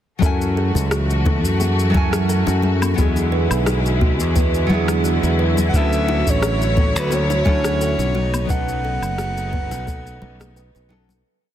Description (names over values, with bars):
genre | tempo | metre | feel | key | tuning
sunset chillout | 87 BPM | 4/4 | swing 54% on 16ths | F# minor | A4 = 442 Hz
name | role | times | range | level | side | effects
nylon-string guitar | accompaniment | 0.2-11.1 s | F#3 to G#5 | -25 LUFS | moving between left 5 dB and right 6 dB | auto-pan, ping-pong delay
rich symphonic string section | sustained chords | 0.2-11.2 s | C#3 to C#5 | -26 LUFS | left 2 dB | none
kalimba | arpeggios | 0.2-11.2 s | F#4 to D#5 | -28 LUFS | right 2 dB | ping-pong delay
modern bright fingered electric bass | bass | 0.2-11.2 s | F#1 to F#2 | -20 LUFS | equal | none
electronic kick drum | drums | 0.2-10.0 s | none | -20 LUFS | equal | none
electronic shaker, rim click and woodblock | drums | 0.2-11.2 s | none | -28 LUFS | left 2 dB | overdrive
bongos and congas | percussion | 0.8-11.2 s | none | -28 LUFS | left 4 dB | none
warm soprano saxophone | melody | 5.7-10.9 s | B4 to F#5 | -24 LUFS | equal | tape echo
room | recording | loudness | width
light reverb, small room reverb | dense, heavily limited modern master | -16 LUFS | side -11 dB against mid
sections
0.2-11.3 groove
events
fade-out 7.6-11.3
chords
0.2 F#m9; 3.0 E9; 5.7 Dmaj9; 8.2 B9